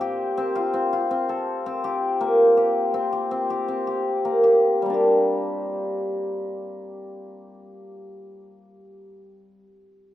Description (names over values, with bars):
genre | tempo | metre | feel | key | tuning
contemporary instrumental, contemporary | 161 BPM | 7/4 | straight | G minor | A4 = 439 Hz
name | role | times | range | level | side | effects
cimbalom | arpeggios | 0.0-9.6 s | G3 to A4 | -21 LUFS | left 1 dB | none
room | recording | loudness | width
light reverb | close, detailed microphones | -20 LUFS | side -13 dB against mid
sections
0.0-4.8 A section; 4.8-7.5 B section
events
slowing down 1.8-4.8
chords
0.0 Fadd9; 2.2 C5; 4.8 Gm